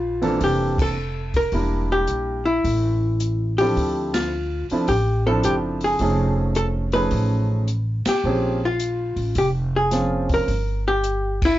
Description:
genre	jazz, small-group swing and bop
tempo	107 BPM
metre	4/4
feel	swing 67% on 8ths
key	unclear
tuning	A4 = 442 Hz
part	archtop guitar, miked and amplified	melody	0.0-11.6 s	E4 to B4	-22 LUFS	left 1 dB	none
part	upright bass	bass	0.0-11.6 s	E1 to D2	-24 LUFS	equal	none
part	warm grand piano	accompaniment	0.2-10.5 s	E3 to Bb4	-24 LUFS	right 2 dB	none
part	open jazz drum kit	drums	0.2-11.5 s	crash cymbal, hi-hat, kick drum, ride cymbal, snare drum	-28 LUFS	equal	none
room	light reverb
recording	dark, warm production, nothing above 7.7 kHz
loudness	-19 LUFS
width	side -14 dB against mid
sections	0.0-11.6 A section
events	band accent 0.7, 4.0, 8.0, 11.3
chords	0.0 Bbmaj9#11; 1.5 Em7b5; 2.6 A5; 3.8 Dm9; 6.0 F7alt; 8.2 Bbm9; 10.5 Gm

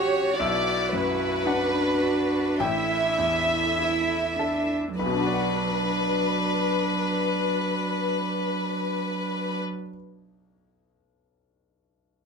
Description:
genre	neoclassical piano and strings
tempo	49-58 BPM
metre	4/4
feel	rubato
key	B minor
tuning	A4 = 440 Hz
part	warm chamber violin section	melody	0.0-9.6 s	B4 to E5	-26 LUFS	left 2 dB	none
part	warm cello	second line	0.0-9.6 s	F#3 to F#4	-30 LUFS	right 4 dB	none
part	bright grand piano	accompaniment	0.0-12.3 s	A1 to B5	-30 LUFS	left 3 dB	none
part	dark viola	accompaniment	0.0-9.6 s	D4 to G4	-31 LUFS	right 2 dB	none
part	dark chamber string section	sustained chords	0.0-9.6 s	C#4 to F#5	-37 LUFS	left 1 dB	none
room	moderate studio reverb, RT60 0.6 s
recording	none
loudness	-23 LUFS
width	side -5 dB against mid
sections	0.0-5.0 A section; 5.0-9.7 B section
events	slowing down 0.0-5.0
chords	0.4 Bm; 2.6 A7sus4; 5.0 Bm

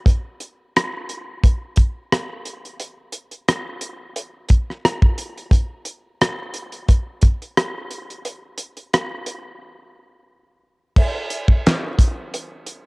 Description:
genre	R&B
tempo	88 BPM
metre	4/4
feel	swing 56% on 16ths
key	none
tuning	none
part	damped 70s drum kit	drums	0.1-12.8 s	crash cymbal, handclaps, hi-hat, kick drum, rim click, snare drum	-17 LUFS	equal	cassette tape
room	light reverb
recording	home recording on cassette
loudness	-18 LUFS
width	side -29 dB against mid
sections	0.1-11.0 A section; 11.0-12.9 B section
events	break 9.6-11.0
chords	none

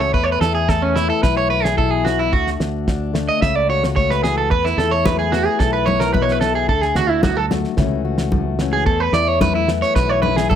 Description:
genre	highlife guitar band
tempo	110 BPM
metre	4/4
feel	straight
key	E mixolydian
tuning	A4 = 439 Hz
part	fingerpicked steel-string acoustic guitar	accompaniment	0.0-10.6 s	E2 to F#4	-23 LUFS	left 11 dB	none
part	electric guitar at the edge of break-up	arpeggios	0.0-10.6 s	C#4 to E5	-18 LUFS	right 3 dB	slapback echo
part	fingered electric bass	bass	0.0-10.6 s	B1 to E2	-23 LUFS	right 1 dB	none
part	damped 70s drum kit	drums	0.1-10.6 s	kick drum, snare drum	-21 LUFS	right 1 dB	none
part	congas	percussion	4.5-10.6 s	none	-23 LUFS	left 2 dB	none
room	little or no reverb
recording	none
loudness	-15 LUFS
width	side -9 dB against mid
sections	0.0-10.6 A section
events	clean electric guitar solo 0.0-10.6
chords	0.1 Esus4; 2.3 D; 3.4 A6/C#; 4.5 Esus4; 6.7 D; 7.8 A6/C#; 8.9 Esus4

